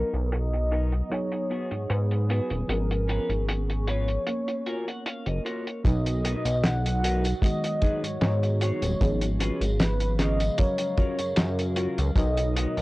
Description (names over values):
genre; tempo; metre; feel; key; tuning
vaporwave; 76 BPM; 4/4; swing 53% on 16ths; F# major; A4 = 440 Hz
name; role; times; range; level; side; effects
warm velvety synth lead; melody; 0.0-12.8 s; G#4 to F#5; -31 LUFS; equal; chorus, analog delay
mellow FM electric piano; accompaniment; 0.0-12.8 s; B2 to E#5; -34 LUFS; right 1 dB; lush chorus, analog delay
warbly tape-like pad; sustained chords; 0.0-12.8 s; C#3 to D#6; -39 LUFS; right 2 dB; chorus, built-in reverb, phaser, vintage 12-bit sampler grit
clean electric guitar; riff; 0.0-12.8 s; B3 to G#5; -35 LUFS; left 1 dB; wide subtle chorus, low-pass filter
chorused synth bass; bass; 0.0-12.8 s; D#1 to G#2; -26 LUFS; equal; none
cloth-damped thuddy drum kit; drums; 0.1-12.8 s; hi-hat, snare drum, tambourine; -30 LUFS; equal; low-pass filter on hats, low-pass filter on snare, low-pass filter on perc, low-pass filter on room
kick drum; drums; 5.8-12.3 s; none; -22 LUFS; equal; none
room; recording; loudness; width
studio reverb; worn, warbling old tape, cassette tape, warbly pitch drift, low-pass filter; -24 LUFS; side -20 dB against mid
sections
0.0-5.8 A section; 5.8-12.8 B section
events
filter sweep on clean electric guitar 0.0-5.8; filter sweep 0.0-5.8; clean electric guitar fill 4.3-5.8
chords
0.0 Bmaj7; 1.1 G#m7; 2.7 C#7/G#; 4.3 F#maj7; 5.8 Bmaj7; 7.4 G#m7; 9.0 C#7/G#; 10.6 F#maj7; 12.2 Bmaj7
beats
0.32 1.11 1.90 | 2.69 3.48 4.27 5.06 | 5.85 6.64 7.43 8.22 | 9.01 9.79 10.59 11.37 | 12.16